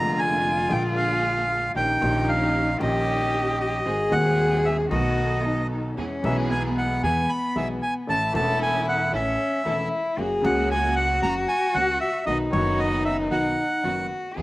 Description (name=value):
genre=tango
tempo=114 BPM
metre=4/4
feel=rubato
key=E major from 6.0 s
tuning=A4 = 440 Hz
part: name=bandoneon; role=melody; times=0.0-14.1 s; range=C#5 to B5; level=-25 LUFS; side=right 1 dB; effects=slapback echo
part: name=dark cello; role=second line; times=0.0-14.4 s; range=B3 to G#4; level=-27 LUFS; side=left 2 dB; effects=none
part: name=warm baby grand piano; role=accompaniment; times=0.0-14.4 s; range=D#1 to A4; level=-29 LUFS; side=left 2 dB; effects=none
part: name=rich chamber string section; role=stabs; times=0.0-14.4 s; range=A#3 to A4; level=-33 LUFS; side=right 4 dB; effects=none
part: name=upright bass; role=bass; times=0.0-14.4 s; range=E1 to E2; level=-29 LUFS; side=right 1 dB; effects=none
room=little or no reverb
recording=recorded outdoors, with no room sound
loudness=-21 LUFS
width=side -18 dB against mid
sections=0.0-6.0 A section; 6.0-14.4 B section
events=none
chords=0.0 A#7; 1.8 D#7/A#; 3.9 G#7; 4.9 B7; 6.0 E; 8.1 A; 10.2 F#; 12.3 B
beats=0.18 0.70 1.23 | 1.75 2.28 2.80 3.33 | 3.86 4.38 4.91 5.44 | 5.98 6.51 7.03 7.56 | 8.08 8.61 9.13 9.66 | 10.18 10.70 11.22 11.75 | 12.27 12.79 13.32 13.84 | 14.37